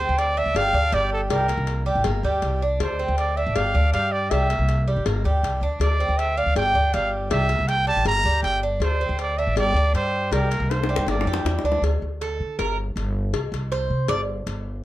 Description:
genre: latin, Cuban son and guajira.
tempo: 160 BPM.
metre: 4/4.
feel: straight.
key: unclear.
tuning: A4 = 438 Hz.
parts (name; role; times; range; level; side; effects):
breathy trumpet; melody; 0.0-11.4 s; A4 to Bb5; -24 LUFS; right 2 dB; none.
Cuban tres; arpeggios; 0.0-14.2 s; G3 to D5; -26 LUFS; right 2 dB; none.
upright bass; bass; 0.0-14.8 s; G1 to D3; -24 LUFS; equal; none.
cowbell and bongos; percussion; 0.2-14.7 s; none; -30 LUFS; left 6 dB; none.
room: moderate small room reverb, RT60 0.5 s.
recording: none.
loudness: -20 LUFS.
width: side -15 dB against mid.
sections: 0.0-11.8 A section; 11.8-14.8 B section.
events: drum fill 10.7-11.8; Cuban tres solo 11.8-14.8.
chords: 0.0 Cadd9/D; 0.6 G5; 1.3 C5; 2.1 Gm; 2.8 D5; 3.6 G5; 4.3 C7; 5.1 Gm; 5.8 Dm9; 6.6 G5; 7.3 C7; 8.1 Gm; 8.8 D5; 9.6 G5; 10.3 C5; 11.1 Gm7; 11.8 D5; 12.6 Gm; 13.3 N.C.; 14.1 G5.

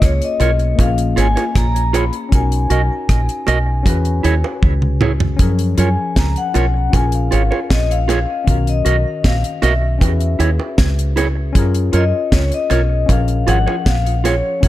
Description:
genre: lovers rock reggae.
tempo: 78 BPM.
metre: 4/4.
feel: straight.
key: unclear.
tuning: A4 = 440 Hz.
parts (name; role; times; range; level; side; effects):
vibraphone with medium mallets; melody; 0.0-14.7 s; C#5 to B5; -22 LUFS; left 4 dB; tape echo.
tine electric piano; accompaniment; 0.0-14.7 s; D#3 to B4; -24 LUFS; left 6 dB; tape echo.
deep dub fingered electric bass; bass; 0.0-14.7 s; G#1 to F#2; -16 LUFS; equal; none.
deep reggae drum kit; drums; 0.0-14.7 s; hi-hat, kick drum, rim click, snare drum, toms; -17 LUFS; equal; none.
mellow electric guitar; stabs; 0.4-14.3 s; E4 to D#5; -22 LUFS; right 6 dB; tape echo.
bongos; percussion; 0.4-14.4 s; none; -28 LUFS; right 6 dB; none.
room: studio reverb.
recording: none.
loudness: -14 LUFS.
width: side -14 dB against mid.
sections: 0.0-14.7 A section.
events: drum fill 4.6-5.4.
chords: 0.0 F#maj7 (rootless); 0.8 A#m7; 2.3 Bmaj7; 3.9 E6; 5.4 F#maj7; 6.9 A#m7; 8.5 Bmaj7; 10.0 E6; 11.6 F#maj7; 13.1 A#m7.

